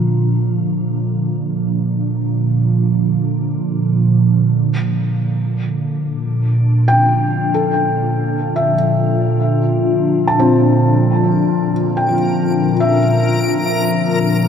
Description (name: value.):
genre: ambient.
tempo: free time.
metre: none.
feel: none.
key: Bb lydian.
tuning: A4 = 442 Hz.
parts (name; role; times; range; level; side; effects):
glassy FM pad; sustained chords; 0.0-14.5 s; Bb2 to F4; -15 LUFS; right 1 dB; ensemble chorus, built-in reverb, phaser.
felt-muted upright piano; arpeggios; 6.9-14.5 s; F3 to A5; -18 LUFS; left 1 dB; diffuse ambient delay.
backwards swelling texture; texture; 11.2-14.5 s; Bb4 to D7; -23 LUFS; left 3 dB; built-in reverb.
room: wet cathedral reverb, RT60 6.5 s.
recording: none.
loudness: -14 LUFS.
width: side -7 dB against mid.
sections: 0.0-4.5 A section; 4.5-14.5 B section.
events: none.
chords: 0.0 Bb.